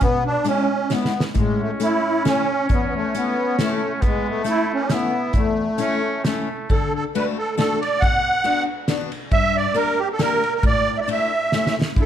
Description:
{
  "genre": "alpine folk, alpine dance band",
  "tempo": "135 BPM",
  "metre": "3/4",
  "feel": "swing 54% on 8ths, rubato",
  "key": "A major, D major from 6.7 s",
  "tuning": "A4 = 440 Hz",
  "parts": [
    { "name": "musette accordion", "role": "melody", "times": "0.0-12.1 s", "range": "G#3 to F#5", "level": "-21 LUFS", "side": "right 1 dB", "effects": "none" },
    { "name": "picked steel-string acoustic guitar", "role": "accompaniment", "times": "0.0-12.1 s", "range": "E2 to G4", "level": "-26 LUFS", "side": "left 6 dB", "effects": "none" },
    { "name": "loose indie drum kit", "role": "drums", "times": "0.0-12.1 s", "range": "hi-hat, kick drum, ride cymbal, snare drum", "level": "-23 LUFS", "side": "equal", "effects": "none" },
    { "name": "clear trumpet", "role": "second line", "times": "1.4-6.7, 12.0-12.1 s", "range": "A3 to E4", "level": "-27 LUFS", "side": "right 2 dB", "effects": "none" }
  ],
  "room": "moderate recital hall reverb, RT60 1.5 s",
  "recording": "dark, warm production",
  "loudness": "-18 LUFS",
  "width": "side -10 dB against mid",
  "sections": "0.0-6.7 A section; 6.7-12.1 B section",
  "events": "drum fill 0.9-1.4, 11.5-12.0",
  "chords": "0.0 E; 1.4 A; 6.7 D; 8.0 Bm; 9.3 Gm; 10.6 Asus4; 11.5 A"
}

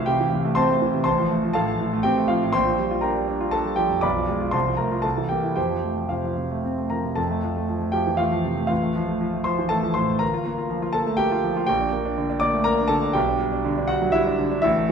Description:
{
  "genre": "classical, virtuoso piano study",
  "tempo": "121 BPM",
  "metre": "3/4",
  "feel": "rubato",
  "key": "F major",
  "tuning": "A4 = 440 Hz",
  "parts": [
    { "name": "clear concert grand piano", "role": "solo", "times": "0.0-14.9 s", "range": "G1 to D6", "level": "-20 LUFS", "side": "equal", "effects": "none" }
  ],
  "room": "wet recital hall reverb, RT60 1.5 s",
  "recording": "minimal, uncompressed stereo recording",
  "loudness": "-20 LUFS",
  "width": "side -6 dB against mid",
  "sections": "0.0-7.2 A section; 7.2-14.9 B section",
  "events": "none",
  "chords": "0.0 Am/C; 1.1 F/A; 2.5 Gm7/Bb; 4.0 Bdim7; 4.5 F/C; 5.0 C7; 5.6 F; 8.7 F/A; 10.2 Gm7; 11.7 Gm/Bb; 13.2 G/B"
}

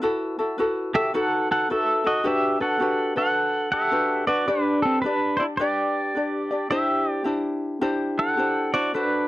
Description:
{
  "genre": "Hawaiian",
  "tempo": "108 BPM",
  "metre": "4/4",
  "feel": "swing 64% on 8ths",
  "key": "E minor, G major from 4.5 s",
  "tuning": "A4 = 441 Hz",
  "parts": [
    { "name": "ukulele", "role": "accompaniment", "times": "0.0-9.3 s", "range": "D4 to D5", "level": "-25 LUFS", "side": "left 1 dB", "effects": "none" },
    { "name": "pedal steel guitar", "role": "melody", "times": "0.9-9.3 s", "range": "C4 to F#5", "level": "-22 LUFS", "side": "right 1 dB", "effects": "none" }
  ],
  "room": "little or no reverb",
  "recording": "dry, close 1970s-style studio recording",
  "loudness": "-21 LUFS",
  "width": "side -16 dB against mid",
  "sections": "0.0-4.5 A section; 4.5-9.3 B section",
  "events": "none",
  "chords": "0.0 B7sus4; 1.1 B7; 2.3 Em9; 4.5 G; 6.7 Cadd9"
}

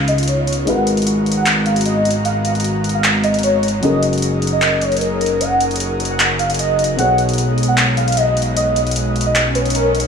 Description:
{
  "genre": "future bass",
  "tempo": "152 BPM",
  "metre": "4/4",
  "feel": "half-time",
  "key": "F# major",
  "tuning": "A4 = 440 Hz",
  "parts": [
    { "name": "felt-muted upright piano", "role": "accompaniment", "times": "0.0-10.1 s", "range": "B2 to C#5", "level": "-24 LUFS", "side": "left 3 dB", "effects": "dub echo" },
    { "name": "airy breathy pad", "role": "sustained chords", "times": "0.0-10.1 s", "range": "C#3 to A#5", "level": "-25 LUFS", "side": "equal", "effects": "chorus" },
    { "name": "fat analog bass", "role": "bass", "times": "0.0-10.1 s", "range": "F#1 to C#2", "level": "-19 LUFS", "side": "equal", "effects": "none" },
    { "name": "warm velvety synth lead", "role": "melody", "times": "0.1-10.0 s", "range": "A#4 to F#5", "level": "-19 LUFS", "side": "equal", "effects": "chorus, dub echo" },
    { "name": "big-room dance drum kit", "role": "drums", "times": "0.1-10.1 s", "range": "handclaps, hi-hat", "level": "-20 LUFS", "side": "equal", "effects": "none" },
    { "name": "swell", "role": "sound effects", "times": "9.5-10.1 s", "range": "none", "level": "-21 LUFS", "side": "left 3 dB", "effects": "none" }
  ],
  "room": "moderate shimmer reverb, RT60 6.6 s",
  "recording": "studio ambience",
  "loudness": "-14 LUFS",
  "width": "side -6 dB against mid",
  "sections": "0.0-10.1 A section",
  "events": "swell 9.5-10.1",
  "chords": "0.0 C#9; 0.7 G#m9; 3.8 F#69; 7.0 B6"
}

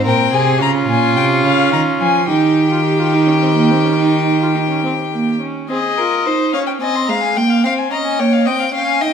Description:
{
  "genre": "classical, baroque-style fugue for string quartet",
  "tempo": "72 BPM (dotted quarters)",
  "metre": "12/8",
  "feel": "straight",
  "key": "Ab major",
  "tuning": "A4 = 440 Hz",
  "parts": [
    { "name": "warm violin", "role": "second line", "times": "0.0-9.1 s", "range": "F4 to G5", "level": "-20 LUFS", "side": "left 3 dB", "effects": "none" },
    { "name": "warm viola", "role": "accompaniment", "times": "0.0-9.1 s", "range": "Ab3 to G4", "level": "-18 LUFS", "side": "right 3 dB", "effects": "none" },
    { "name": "rich cello", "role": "bass", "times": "0.0-5.4 s", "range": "Bb2 to F3", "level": "-17 LUFS", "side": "right 3 dB", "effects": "none" },
    { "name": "dark violin", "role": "melody", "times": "0.1-9.1 s", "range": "Eb5 to C6", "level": "-19 LUFS", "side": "left 8 dB", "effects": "none" }
  ],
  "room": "moderate recital hall reverb, RT60 1.6 s",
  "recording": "none",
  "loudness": "-13 LUFS",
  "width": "side -7 dB against mid",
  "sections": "0.0-5.7 A section; 5.7-9.1 B section",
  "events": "none",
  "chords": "0.0 Ab; 0.6 Bbm; 2.3 Eb; 5.7 Ab; 7.4 Gdim/Bb"
}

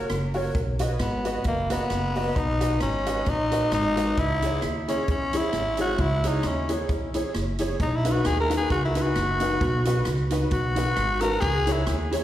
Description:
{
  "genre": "ska",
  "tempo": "132 BPM",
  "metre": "4/4",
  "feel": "swing 55% on 8ths",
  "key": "B major",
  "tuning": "A4 = 435 Hz",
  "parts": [
    { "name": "mellow electric guitar", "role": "accompaniment", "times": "0.0-12.2 s", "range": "D#4 to D#5", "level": "-33 LUFS", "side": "right 2 dB", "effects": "spring reverb, analog delay, slapback echo" },
    { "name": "honky-tonk upright piano", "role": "stabs", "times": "0.0-12.2 s", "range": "D#4 to D#5", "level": "-32 LUFS", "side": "left 1 dB", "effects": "analog delay, slapback echo" },
    { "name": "upright bass", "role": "bass", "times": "0.0-12.2 s", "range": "F#1 to E2", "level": "-27 LUFS", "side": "equal", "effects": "none" },
    { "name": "swinging big-band drum kit", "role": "drums", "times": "0.1-12.2 s", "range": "hi-hat, kick drum, rim click", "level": "-31 LUFS", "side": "right 1 dB", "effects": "none" },
    { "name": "growling tenor saxophone", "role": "melody", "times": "1.0-12.0 s", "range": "A#3 to A#4", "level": "-26 LUFS", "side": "left 1 dB", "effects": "analog delay, slapback echo" }
  ],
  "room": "light reverb",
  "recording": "live gig heard through the venue's PA, recital hall reverb",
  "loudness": "-22 LUFS",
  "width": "side -12 dB against mid",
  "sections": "0.6-12.2 A section",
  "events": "tenor saxophone solo 0.6-12.2",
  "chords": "0.0 F#; 0.6 B; 4.2 C#m; 7.8 B; 11.4 C#m"
}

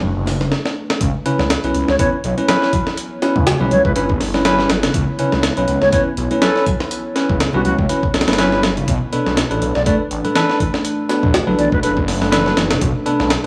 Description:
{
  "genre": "breakbeat, breaks",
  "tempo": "122 BPM",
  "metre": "4/4",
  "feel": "swing 56% on 16ths",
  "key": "unclear",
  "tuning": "A4 = 440 Hz",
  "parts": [
    { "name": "dark analog pad", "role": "sustained chords", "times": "0.0-13.5 s", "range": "A3 to C#5", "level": "-29 LUFS", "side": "equal", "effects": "none" },
    { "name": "phased detuned saw bass", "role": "bass", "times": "0.0-13.5 s", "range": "F#1 to C#2", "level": "-24 LUFS", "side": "equal", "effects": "phaser, tube saturation" },
    { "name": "congas", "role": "percussion", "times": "0.0-13.3 s", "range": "none", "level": "-31 LUFS", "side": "equal", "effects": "none" },
    { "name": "breakbeat sampler-style drum kit", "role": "drums", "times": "0.3-13.5 s", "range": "hi-hat, kick drum, snare drum", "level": "-22 LUFS", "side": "equal", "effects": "small room ambience" },
    { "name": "mellow electric guitar", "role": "riff", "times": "1.0-13.1 s", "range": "B2 to C#4", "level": "-26 LUFS", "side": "equal", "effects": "tape echo" },
    { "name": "bell-like tine electric piano", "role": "stabs", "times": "1.3-13.5 s", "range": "C#4 to B4", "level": "-22 LUFS", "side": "equal", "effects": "tape echo" },
    { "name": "bright baroque flute", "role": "melody", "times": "1.9-11.9 s", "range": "F#4 to D5", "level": "-23 LUFS", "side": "equal", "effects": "AM radio sound, vintage 12-bit sampler grit, tape echo" }
  ],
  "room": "light reverb, digital ambience",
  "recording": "dry, gritty hardware recording, small room ambience",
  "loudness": "-17 LUFS",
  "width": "mono",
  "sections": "0.0-1.0 A section; 1.0-13.5 B section",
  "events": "drum fill 0.5-1.0; drop 1.0-13.5",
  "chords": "0.0 Bm7; 1.0 C#m7b5; 8.9 Bm7"
}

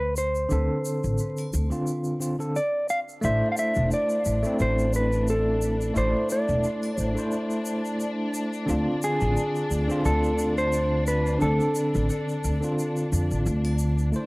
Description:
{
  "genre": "trip hop",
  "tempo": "88 BPM",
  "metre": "4/4",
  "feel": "swing 55% on 16ths",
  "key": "unclear",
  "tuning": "A4 = 440 Hz",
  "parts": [
    { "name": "mellow electric guitar", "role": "melody", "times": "0.0-13.4 s", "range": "G#4 to F5", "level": "-27 LUFS", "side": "equal", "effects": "vintage 12-bit sampler grit, tape echo" },
    { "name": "upright bass", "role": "bass", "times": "0.0-14.1 s", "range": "E1 to F2", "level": "-26 LUFS", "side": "equal", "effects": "none" },
    { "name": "egg shaker and triangle", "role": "percussion", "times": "0.2-14.3 s", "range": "none", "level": "-40 LUFS", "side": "left 1 dB", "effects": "none" },
    { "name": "barky tine electric piano", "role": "accompaniment", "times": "0.5-14.3 s", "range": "D3 to D5", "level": "-28 LUFS", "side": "equal", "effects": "tremolo" },
    { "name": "rich studio string section", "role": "sustained chords", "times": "3.2-14.3 s", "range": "D4", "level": "-34 LUFS", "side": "left 1 dB", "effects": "none" },
    { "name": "wind-like tuned noise texture", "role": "texture", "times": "14.2-14.3 s", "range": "none", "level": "barely audible", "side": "none", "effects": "none" }
  ],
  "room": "light reverb, small room reverb",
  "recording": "home recording on cassette, vinyl crackle",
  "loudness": "-22 LUFS",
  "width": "side -24 dB against mid",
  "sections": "0.0-14.1 A section",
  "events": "none",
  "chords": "0.0 Dm7; 3.2 Am; 8.7 Dm7"
}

